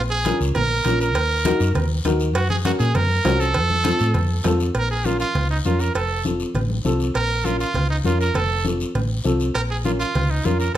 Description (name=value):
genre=latin, cumbia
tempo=200 BPM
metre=4/4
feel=straight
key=Bb harmonic minor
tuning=A4 = 440 Hz
part: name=bright trumpet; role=melody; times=0.0-10.8 s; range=Eb4 to Bb4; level=-23 LUFS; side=right 3 dB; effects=plate reverb
part: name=hollow-body short-scale fingered electric bass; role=bass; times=0.0-10.8 s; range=F1 to Bb2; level=-22 LUFS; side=equal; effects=none
part: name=cowbell and timbales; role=percussion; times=0.2-10.8 s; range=none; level=-29 LUFS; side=right 3 dB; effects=none
part: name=dark upright piano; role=accompaniment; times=0.3-10.7 s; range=C4 to C5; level=-24 LUFS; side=left 2 dB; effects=none
part: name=congas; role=percussion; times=0.3-10.6 s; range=none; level=-28 LUFS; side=left 2 dB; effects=none
part: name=guiro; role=percussion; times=0.3-10.8 s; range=none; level=-35 LUFS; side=left 5 dB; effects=none
room=light reverb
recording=none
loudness=-18 LUFS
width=side -12 dB against mid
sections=0.0-4.8 A section; 4.8-10.8 B section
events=none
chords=0.0 Bbm; 1.2 Ebm; 2.4 Gb; 3.6 F; 4.8 Bbm; 6.0 F; 7.2 Bbm; 8.4 F; 9.6 Bbm